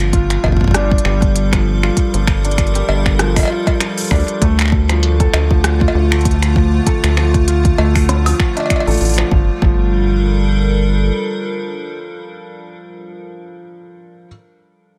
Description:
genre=IDM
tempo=98 BPM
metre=4/4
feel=swing 56% on 16ths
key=G minor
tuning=A4 = 440 Hz
part: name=icy glass pad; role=sustained chords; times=0.0-12.5 s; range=D3 to Bb4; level=-24 LUFS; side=equal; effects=chorus, built-in reverb, vintage 12-bit sampler grit
part: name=felt-muted upright piano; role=arpeggios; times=0.0-14.3 s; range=F3 to A4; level=-24 LUFS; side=equal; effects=tape echo
part: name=rubbery square bass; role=bass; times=0.0-11.1 s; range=G1 to D2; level=-18 LUFS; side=equal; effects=none
part: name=organic electronic drum kit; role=drums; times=0.0-9.3 s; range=cowbell, finger snaps, hi-hat, rim click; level=-22 LUFS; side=equal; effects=delay
part: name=electronic kick drum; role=drums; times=0.1-9.8 s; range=none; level=-18 LUFS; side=equal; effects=none
room=digital ambience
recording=none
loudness=-15 LUFS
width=mono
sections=0.0-9.3 A section; 9.3-11.8 B section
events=none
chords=0.0 Gm7; 4.4 Dm; 9.3 Gm7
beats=0.13 0.74 1.36 | 1.97 2.58 3.19 3.81 | 4.42 5.03 5.64 6.25 | 6.87 7.48 8.09 8.70 | 9.31 9.93 10.54 11.15

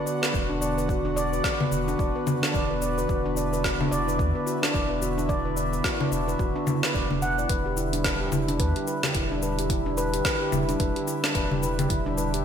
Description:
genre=organic downtempo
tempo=109 BPM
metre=4/4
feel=swing 59% on 16ths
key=E minor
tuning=A4 = 440 Hz
part: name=airy breathy pad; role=sustained chords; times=0.0-12.4 s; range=D3 to F#4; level=-31 LUFS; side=right 2 dB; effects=chorus, sidechain pumping
part: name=handpan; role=arpeggios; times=0.0-12.4 s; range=D4 to F#5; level=-27 LUFS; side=equal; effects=ping-pong delay
part: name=deep house drum kit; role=drums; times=0.1-12.4 s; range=congas, hi-hat, shaker, snare drum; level=-28 LUFS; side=equal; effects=gated reverb
part: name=warm sub bass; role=bass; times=0.3-12.4 s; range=E1 to E2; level=-31 LUFS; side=equal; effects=sidechain pumping
part: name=electronic kick drum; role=drums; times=0.3-12.0 s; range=none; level=-30 LUFS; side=equal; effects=none
room=moderate lush hall reverb, RT60 1.9 s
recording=bright 1980s-style digital production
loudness=-23 LUFS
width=side -8 dB against mid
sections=0.0-7.5 A section; 7.5-12.4 B section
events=none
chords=0.0 Bm/E; 7.5 Em7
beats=0.34 | 0.89 1.44 1.99 2.54 | 3.09 3.64 4.19 4.74 | 5.29 5.84 6.40 6.95 | 7.50 8.05 8.60 9.15 | 9.70 10.25 10.80 11.35 | 11.90

